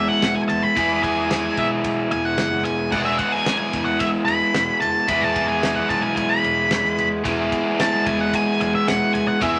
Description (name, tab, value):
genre	psychedelic rock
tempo	111 BPM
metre	4/4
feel	straight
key	E major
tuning	A4 = 441 Hz
part	octave-fuzz lead guitar	melody	0.0-9.6 s	E5 to B5	-24 LUFS	equal	distortion
part	combo organ	sustained chords	0.0-9.6 s	G#4 to G#5	-38 LUFS	equal	none
part	biting overdriven guitar	riff	0.0-9.6 s	E3 to G#4	-24 LUFS	equal	none
part	fuzz picked electric bass	bass	0.0-9.6 s	E1 to E2	-35 LUFS	equal	overdrive
part	cloth-damped thuddy drum kit	drums	0.2-9.5 s	crash cymbal, kick drum, ride cymbal, snare drum	-31 LUFS	equal	none
part	congas	percussion	2.9-9.5 s	none	-43 LUFS	equal	none
room	moderate studio reverb, RT60 1.0 s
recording	none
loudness	-20 LUFS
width	mono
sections	0.0-9.6 A section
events	lead electric guitar solo 0.0-9.6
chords	0.0 E